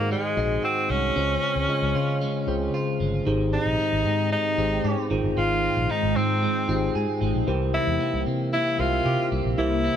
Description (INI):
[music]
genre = pop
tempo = 114 BPM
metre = 4/4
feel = straight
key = unclear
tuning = A4 = 440 Hz
[part]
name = bright tenor saxophone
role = melody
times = 0.0-10.0 s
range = Ab3 to F4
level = -26 LUFS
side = equal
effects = none
[part]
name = mellow tine electric piano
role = accompaniment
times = 0.0-10.0 s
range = Ab2 to E5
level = -27 LUFS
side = left 2 dB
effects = slow stereo tremolo
[part]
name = clean electric guitar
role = riff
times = 0.0-10.0 s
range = Eb3 to Ab4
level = -32 LUFS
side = right 7 dB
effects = lush chorus
[part]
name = vintage muted fingered electric bass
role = bass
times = 0.0-9.9 s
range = G1 to Db3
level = -27 LUFS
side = equal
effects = none
[part]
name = ethereal airy pad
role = sustained chords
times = 4.1-10.0 s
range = C3 to G5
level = -32 LUFS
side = equal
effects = ensemble chorus, built-in reverb, phaser
[sound]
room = light reverb, digital ambience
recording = none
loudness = -22 LUFS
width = side -9 dB against mid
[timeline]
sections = 0.0-3.3 A section; 3.3-10.0 B section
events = tine electric piano fill 2.5-3.3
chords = 0.0 Ab7; 1.2 Dbmaj7; 3.3 Abmaj7; 5.1 Fm7; 7.5 C7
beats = 0.11 0.64 | 1.16 1.69 2.21 2.74 | 3.27 3.79 4.32 4.85 | 5.37 5.90 6.42 6.95 | 7.48 8.00 8.53 9.06 | 9.58